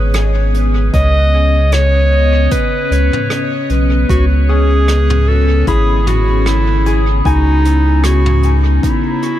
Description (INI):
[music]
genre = ambient dub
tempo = 76 BPM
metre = 4/4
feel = swing 56% on 16ths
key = C# minor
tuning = A4 = 440 Hz
[part]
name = clear clarinet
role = melody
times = 0.0-9.4 s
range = D#4 to D#5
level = -17 LUFS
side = equal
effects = dub echo
[part]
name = soft additive organ-like pad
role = sustained chords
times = 0.0-9.4 s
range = C#3 to D#5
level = -20 LUFS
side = left 3 dB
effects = ensemble chorus, built-in reverb
[part]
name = concert harp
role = arpeggios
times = 0.0-9.1 s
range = C#4 to B5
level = -25 LUFS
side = left 4 dB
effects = dub echo
[part]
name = warm sub bass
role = bass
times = 0.0-8.8 s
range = G#1 to C#2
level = -12 LUFS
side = equal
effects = none
[part]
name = vintage brush drum kit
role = drums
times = 0.1-9.4 s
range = hi-hat, rim click, toms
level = -24 LUFS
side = equal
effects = dub echo
[part]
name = electronic kick drum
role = drums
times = 0.9-9.0 s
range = none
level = -17 LUFS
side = equal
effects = none
[sound]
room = small room ambience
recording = none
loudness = -10 LUFS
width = side -12 dB against mid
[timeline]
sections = 0.0-9.4 A section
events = none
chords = 0.0 C#m9